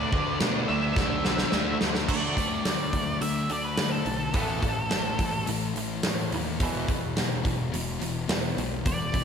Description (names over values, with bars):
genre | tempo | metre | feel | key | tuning
quiet-loud alternative rock | 106 BPM | 4/4 | straight | unclear | A4 = 440 Hz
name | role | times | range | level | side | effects
octave-fuzz lead guitar | melody | 0.0-5.4, 8.9-9.2 s | A4 to E5 | -31 LUFS | right 1 dB | distortion, slapback echo
thick fuzz guitar | riff | 0.0-9.2 s | E2 to D4 | -32 LUFS | left 8 dB | distortion
thick fuzz guitar | riff | 0.0-2.1 s | D3 to D4 | -32 LUFS | right 11 dB | distortion
fuzz picked electric bass | bass | 0.0-9.2 s | E1 to D3 | -33 LUFS | equal | overdrive
big rock drum kit | drums | 0.1-9.2 s | crash cymbal, hi-hat, kick drum, snare drum | -28 LUFS | right 1 dB | none
twangy electric guitar | arpeggios | 2.1-9.2 s | E2 to B3 | -36 LUFS | right 5 dB | lush chorus, slapback echo, analog delay
room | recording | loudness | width
moderate lush hall reverb, RT60 1.9 s, small room ambience | big arena sound | -24 LUFS | side -7 dB against mid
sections
0.0-2.1 A section; 2.1-9.2 B section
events
drum fill 1.0-2.1; lead electric guitar solo 2.1-9.2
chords
0.0 D; 4.3 A5; 6.6 E5